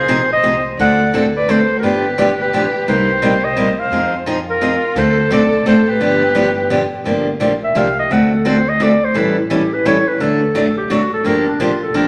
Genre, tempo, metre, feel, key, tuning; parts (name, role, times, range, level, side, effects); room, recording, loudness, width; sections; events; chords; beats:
acoustic string swing (jazz manouche); 172 BPM; 3/4; swing 62% on 8ths; G minor from 7.1 s; A4 = 440 Hz
warm clarinet; melody; 0.0-12.1 s; D4 to F#5; -19 LUFS; equal
warm violin; second line; 0.0-6.9 s; F4 to D5; -25 LUFS; equal
picked steel-string acoustic guitar; accompaniment; 0.1-12.1 s; C3 to A4; -18 LUFS; equal
upright bass; bass; 0.1-12.1 s; G1 to F2; -30 LUFS; equal
wet large studio reverb, RT60 1.4 s; -15 LUFS; mono
0.0-7.1 A section; 7.1-12.1 B section
clarinet solo 7.1-12.1
0.0 Ab6; 0.8 D7; 1.8 G7; 2.9 Cm7; 3.9 Fm7; 5.0 D7; 6.0 G7; 7.1 Gm7; 8.1 D7; 9.1 A7; 10.2 D; 11.2 Gm7
0.07 0.42 | 0.77 1.12 1.47 | 1.82 2.17 2.52 | 2.87 3.21 3.56 | 3.91 4.26 4.61 | 4.96 5.31 5.66 | 6.01 6.36 6.70 | 7.05 7.40 7.75 | 8.10 8.45 8.80 | 9.15 9.50 9.85 | 10.19 10.54 10.89 | 11.24 11.59 11.94